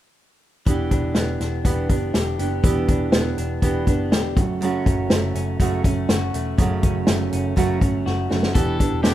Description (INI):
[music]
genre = jangly indie pop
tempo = 122 BPM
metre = 4/4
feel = straight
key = E dorian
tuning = A4 = 439 Hz
[part]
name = fingerpicked steel-string acoustic guitar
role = accompaniment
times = 0.7-9.1 s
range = F#2 to G4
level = -24 LUFS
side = right 5 dB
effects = none
[part]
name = electric guitar through a small old amp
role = arpeggios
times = 0.7-9.1 s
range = F#2 to G4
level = -28 LUFS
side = left 4 dB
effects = digital delay
[part]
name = vintage muted picked electric bass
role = bass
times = 0.7-9.1 s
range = E1 to G1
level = -26 LUFS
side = left 1 dB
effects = none
[part]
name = vintage drum kit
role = drums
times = 0.7-9.1 s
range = hi-hat, kick drum, snare drum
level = -20 LUFS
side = left 1 dB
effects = none
[part]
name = electric guitar at the edge of break-up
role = melody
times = 8.5-9.1 s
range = G4 to A4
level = -28 LUFS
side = left 4 dB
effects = none
[sound]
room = small room ambience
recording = rough home demo mix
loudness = -18 LUFS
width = side -13 dB against mid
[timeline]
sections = 0.7-8.6 A section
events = drum fill 8.1-8.6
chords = 0.7 Em7; 4.4 F#m; 8.6 Em7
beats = | 0.67 1.16 1.65 2.15 | 2.64 3.13 3.63 4.12 | 4.61 5.11 5.60 6.09 | 6.58 7.08 7.57 8.06 | 8.55 9.05